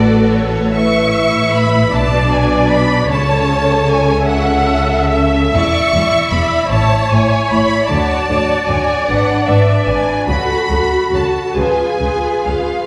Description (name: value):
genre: classical, slow romantic movement for string orchestra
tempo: 50 BPM (dotted quarters)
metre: 6/8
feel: uneven beats, rubato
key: unclear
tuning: A4 = 443 Hz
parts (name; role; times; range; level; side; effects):
- rich symphonic violin section; melody; 0.0-12.9 s; C#5 to C#6; -22 LUFS; equal; none
- rich symphonic violin section; second line; 0.0-12.9 s; C#4 to D5; -21 LUFS; equal; none
- warm symphonic viola section; accompaniment; 0.0-12.9 s; F#4 to E5; -20 LUFS; equal; none
- rich symphonic cello section; bass; 0.0-12.5 s; E2 to D3; -22 LUFS; equal; none
- rich symphonic double bass section; bass; 0.0-12.5 s; E1 to D2; -21 LUFS; equal; none
room: wet scoring stage reverb, RT60 1.6 s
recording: heard from further back in the room, vinyl crackle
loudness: -14 LUFS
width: mono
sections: 0.0-12.9 A section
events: none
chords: 0.0 F#m/A; 0.8 A; 1.9 Bm7; 3.1 A/C#; 5.5 Bmadd11/E; 6.7 A; 7.9 Dmaj7; 9.1 G#dim; 10.3 F#m; 11.6 C#7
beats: | 0.75 1.94 | 3.10 4.26 | 5.54 6.72 | 7.91 9.09 | 10.28 11.56